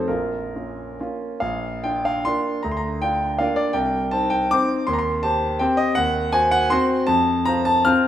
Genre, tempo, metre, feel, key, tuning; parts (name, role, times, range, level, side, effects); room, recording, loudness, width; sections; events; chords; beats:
classical, romantic triple-time dance for piano with dotted rhythms; 126-174 BPM; 3/4; rubato; Bb major; A4 = 440 Hz
clear concert grand piano; solo; 0.0-8.1 s; Bb1 to F6; -19 LUFS; equal
wet recital hall reverb, RT60 1.7 s; minimal, uncompressed stereo recording; -19 LUFS; side -11 dB against mid
0.0-1.4 A section; 1.4-8.1 B section
0.1 Bbm; 1.4 Bb; 2.6 Bb/D; 3.8 Cm; 4.9 Cm/Eb; 6.0 Cdim/Eb; 7.1 F
| 0.07 0.53 0.98 | 1.41 1.83 2.26 | 2.64 3.02 3.40 | 3.75 4.12 4.50 | 4.87 5.24 5.61 | 5.97 6.34 6.72 | 7.08 7.46 7.87